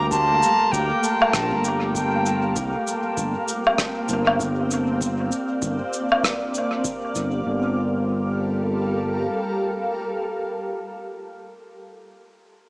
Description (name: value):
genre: ambient dub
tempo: 98 BPM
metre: 4/4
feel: swing 59% on 16ths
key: G minor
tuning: A4 = 440 Hz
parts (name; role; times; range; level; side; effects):
- bright reedy wooden flute; melody; 0.0-2.5 s; G5 to A5; -24 LUFS; equal; dub echo
- granular cloud pad; sustained chords; 0.0-10.7 s; G3 to F5; -26 LUFS; equal; built-in reverb
- overdriven fingered electric bass; bass; 0.0-9.3 s; G1 to D2; -24 LUFS; equal; tube saturation
- cabasa, woodblock and rim click; drums; 0.1-7.3 s; none; -23 LUFS; equal; dub echo
- electronic kick drum; drums; 0.1-7.0 s; none; -35 LUFS; equal; none
room: wet echo chamber reverb, RT60 1.8 s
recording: small speaker sound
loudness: -20 LUFS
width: side -26 dB against mid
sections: 0.0-7.5 A section; 7.5-9.9 B section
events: none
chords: 0.0 Gm7; 2.6 C7sus4; 7.5 Gm7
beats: | 0.11 0.72 1.34 1.95 | 2.56 3.17 3.79 4.40 | 5.01 5.62 6.23 6.85 | 7.46 8.07 8.68 9.29